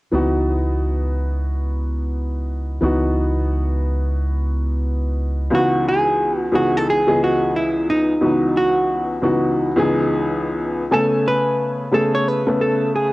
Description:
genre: hip hop.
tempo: 89 BPM.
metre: 4/4.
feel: swing 63% on 16ths.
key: C# minor.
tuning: A4 = 441 Hz.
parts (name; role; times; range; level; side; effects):
warm upright piano; accompaniment; 0.1-13.1 s; C#2 to G#5; -20 LUFS; left 1 dB; cassette tape.
deep dub fingered electric bass; bass; 0.1-5.5 s; C#2; -20 LUFS; equal; none.
hollow-body jazz guitar; melody; 5.5-13.1 s; D#4 to C#5; -19 LUFS; right 1 dB; cassette tape.
room: light reverb, studio ambience.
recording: home recording on cassette.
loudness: -17 LUFS.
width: side -20 dB against mid.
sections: 0.1-5.5 A section; 5.5-13.1 B section.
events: none.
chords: 0.1 C#m11; 10.9 Amaj9.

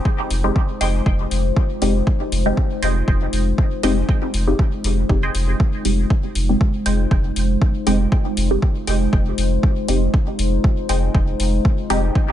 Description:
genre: dub techno.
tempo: 119 BPM.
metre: 4/4.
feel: swing 54% on 16ths.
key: F minor.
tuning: A4 = 440 Hz.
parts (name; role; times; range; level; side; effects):
deep dark ambient pad; sustained chords; 0.0-12.3 s; Ab3 to C5; -25 LUFS; left 1 dB; chorus, built-in reverb, sidechain pumping.
electronic kick drum; drums; 0.1-12.3 s; none; -17 LUFS; equal; overdrive, small room reverb.
pure sine sub bass; bass; 0.3-12.1 s; F1; -20 LUFS; equal; sidechain pumping.
electronic hi-hat; drums; 0.3-12.0 s; none; -30 LUFS; left 5 dB; overdrive, small room reverb.
filtered dub chord stab; stabs; 0.4-12.0 s; Ab3 to G4; -23 LUFS; equal; phaser, sidechain pumping, dub echo.
filtered dub chord stab; riff; 0.8-12.0 s; Ab4 to G5; -30 LUFS; right 2 dB; phaser, sidechain pumping, dub echo.
room: little or no reverb.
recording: echo-heavy mix, nothing above 10.6 kHz.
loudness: -16 LUFS.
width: side -11 dB against mid.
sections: 0.0-12.3 A section.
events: none.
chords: 0.0 Fm7.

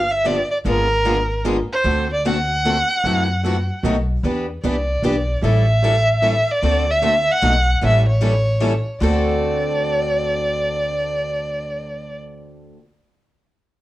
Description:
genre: acoustic string swing (jazz manouche).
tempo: 151 BPM.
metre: 3/4.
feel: swing 61% on 8ths.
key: D mixolydian.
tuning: A4 = 440 Hz.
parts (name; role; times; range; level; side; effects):
dark violin; melody; 0.0-12.2 s; Bb4 to F#5; -20 LUFS; right 1 dB; none.
upright bass; bass; 0.0-12.7 s; G1 to F#2; -21 LUFS; equal; none.
picked steel-string acoustic guitar; accompaniment; 0.2-12.8 s; B2 to A4; -25 LUFS; left 3 dB; none.
picked steel-string acoustic guitar; accompaniment; 0.2-12.8 s; B2 to B4; -27 LUFS; right 4 dB; none.
room: light reverb.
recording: worn, warbling old tape, cassette tape, warbly pitch drift.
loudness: -16 LUFS.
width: side -16 dB against mid.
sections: 0.0-9.0 A section; 9.0-11.4 B section.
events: none.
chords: 0.0 G7; 0.7 G#dim7; 1.8 D7; 3.0 F#m7b5; 3.8 B7; 4.2 Em7; 5.4 A7; 6.6 D7; 7.4 B7; 7.8 A7; 9.0 D7.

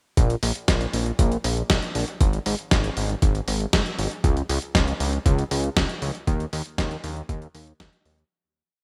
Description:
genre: italo disco.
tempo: 118 BPM.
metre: 4/4.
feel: straight.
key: Bb minor.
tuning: A4 = 439 Hz.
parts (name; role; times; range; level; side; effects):
fat analog bass; bass; 0.2-8.2 s; Ab1 to Eb2; -28 LUFS; equal; digital delay.
dusty soul sampler-style drum kit; drums; 0.2-8.3 s; hi-hat, snare drum; -28 LUFS; equal; gated reverb.
electronic kick drum; drums; 0.2-7.9 s; none; -23 LUFS; equal; none.
room: light reverb, digital ambience.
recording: bright 1980s-style digital production.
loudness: -24 LUFS.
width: mono.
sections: 0.2-8.3 verse.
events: fade-out 5.6-8.3.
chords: none.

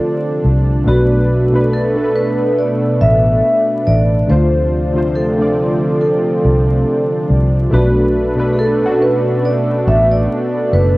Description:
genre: lo-fi hip hop.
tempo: 70 BPM.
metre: 4/4.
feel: swing 56% on 16ths.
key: B minor.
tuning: A4 = 440 Hz.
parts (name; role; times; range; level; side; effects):
vibraphone with soft mallets; melody; 0.0-11.0 s; F#4 to E5; -17 LUFS; equal; low-pass filter, cassette tape.
warm analog keys; accompaniment; 0.0-11.0 s; B2 to D5; -18 LUFS; equal; chorus, cassette tape, low-pass filter.
lush unison pad; sustained chords; 0.0-11.0 s; B2 to D4; -20 LUFS; equal; chorus, low-pass filter, cassette tape.
vintage muted fingered electric bass; bass; 0.4-11.0 s; F#1 to D2; -15 LUFS; equal; none.
room: light reverb, digital ambience.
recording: home recording on cassette, vinyl crackle.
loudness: -12 LUFS.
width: side -20 dB against mid.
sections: 0.0-11.0 A section.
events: none.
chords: 0.0 Dm7; 0.9 Bm7; 4.3 Dm7; 7.7 Bm7.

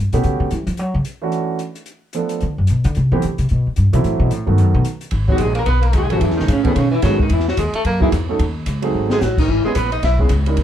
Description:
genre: jazz, small-group swing and bop.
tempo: 220 BPM.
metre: 4/4.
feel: swing 61% on 8ths.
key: G# minor from 5.1 s.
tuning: A4 = 442 Hz.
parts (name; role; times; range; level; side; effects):
upright bass; bass; 0.0-10.6 s; G#1 to F#3; -17 LUFS; left 1 dB; none.
warm baby grand piano; accompaniment; 0.1-10.6 s; D#3 to B4; -21 LUFS; right 4 dB; none.
open jazz drum kit; drums; 0.1-10.6 s; crash cymbal, hi-hat, kick drum, ride cymbal, snare drum; -24 LUFS; left 1 dB; none.
vintage hollow-body jazz guitar; melody; 5.3-10.1 s; B3 to E5; -20 LUFS; equal; none.
bright tenor saxophone; second line; 5.3-10.2 s; B2 to E4; -25 LUFS; right 2 dB; none.
room: light reverb.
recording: dark, warm production.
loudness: -15 LUFS.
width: side -10 dB against mid.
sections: 0.0-5.1 A section; 5.1-10.6 B section.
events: upright bass solo 0.0-5.1; drum fill 8.9.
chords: 0.2 A13; 0.8 Dmaj9; 1.9 Bm7b5; 2.4 Bm; 2.9 Am9; 4.0 F#m7b5; 4.6 B7; 5.1 G#m7; 6.2 F#m9; 6.8 B13; 7.3 Emaj9#11; 8.4 D#m7b5; 8.9 G#7b9; 9.5 C#m7.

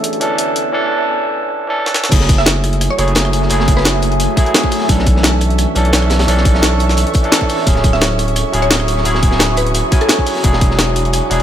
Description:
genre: liquid drum and bass.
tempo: 173 BPM.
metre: 4/4.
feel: straight.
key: F# minor.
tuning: A4 = 440 Hz.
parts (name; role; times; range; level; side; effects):
overdriven tine electric piano; accompaniment; 0.0-11.4 s; E3 to G#5; -18 LUFS; right 1 dB; dub echo.
ethereal airy pad; sustained chords; 0.0-11.4 s; D3 to D6; -22 LUFS; right 1 dB; ensemble chorus, built-in reverb, sidechain pumping.
jungle sampler-style drum kit; drums; 0.0-11.4 s; crash cymbal, hi-hat, rim click, snare drum; -17 LUFS; left 1 dB; none.
saturated sub bass; bass; 2.1-11.4 s; D1 to B1; -16 LUFS; equal; none.
crunchy breakbeat drum kit; drums; 2.1-11.4 s; hi-hat, snare drum; -22 LUFS; equal; high-pass filter on hats, high-pass filter on snare, high-pass filter on room.
electronic kick drum; drums; 2.1-10.7 s; none; -13 LUFS; equal; none.
mallet-like synth pluck; melody; 2.4-4.3, 7.9-10.4 s; A4 to E5; -23 LUFS; equal; lush chorus, cassette tape, ping-pong delay.
room: light reverb, small room ambience.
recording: high-pass filter.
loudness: -11 LUFS.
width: side -10 dB against mid.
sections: 0.0-2.1 A section; 2.1-11.4 B section.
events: build-up 0.0-2.1; filter sweep on ambient pad 0.0-2.1; drum fill 1.9; drop 2.1-11.4.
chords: 0.0 Bm11; 2.1 F#m9; 4.9 Bm11; 7.7 Dmaj9#11; 10.4 E9.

